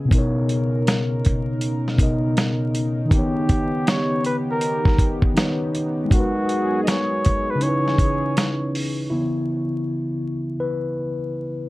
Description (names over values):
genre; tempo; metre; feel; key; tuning
lo-fi hip hop; 80 BPM; 4/4; swing 66% on 16ths; C# dorian; A4 = 441 Hz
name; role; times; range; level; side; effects
mellow tine electric piano; accompaniment; 0.0-11.7 s; B2 to D#5; -23 LUFS; left 1 dB; slow stereo tremolo, cassette tape, low-pass filter
warm analog pad; sustained chords; 0.0-9.1 s; C#3 to A#4; -29 LUFS; right 1 dB; chorus, low-pass filter
dusty soul sampler-style drum kit; drums; 0.1-9.0 s; hi-hat, kick drum, snare drum; -20 LUFS; equal; none
mellow flugelhorn; melody; 3.1-8.7 s; F#4 to D#5; -26 LUFS; equal; low-pass filter, tape echo
room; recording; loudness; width
moderate small room reverb, RT60 0.5 s; vinyl crackle; -19 LUFS; side -19 dB against mid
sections
0.0-9.1 A section; 9.1-11.7 B section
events
tine electric piano solo 9.1-11.7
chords
0.1 Bmaj9; 3.1 D#7b13; 6.1 G#m7; 7.6 C#m7